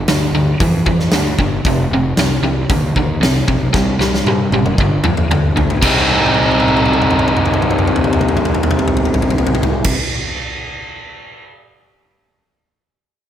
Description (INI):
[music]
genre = blues rock power trio and southern rock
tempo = 115 BPM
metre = 4/4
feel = straight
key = C minor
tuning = A4 = 441 Hz
[part]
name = biting overdriven guitar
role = riff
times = 0.0-10.0 s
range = F2 to Eb4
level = -15 LUFS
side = equal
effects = none
[part]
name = fuzz fingered electric bass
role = bass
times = 0.0-9.9 s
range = F1 to G2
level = -20 LUFS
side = equal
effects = overdrive
[part]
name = big rock drum kit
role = drums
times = 0.1-11.4 s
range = crash cymbal, hi-hat, kick drum, snare drum, toms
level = -17 LUFS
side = equal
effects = none
[sound]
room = light reverb, small room ambience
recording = none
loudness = -12 LUFS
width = side -10 dB against mid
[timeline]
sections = 0.0-5.8 A section; 5.8-10.0 B section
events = drum fill 3.7-5.8, 6.1-9.9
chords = 0.0 G5; 1.7 F5; 3.7 C5; 4.8 G5; 5.8 Cm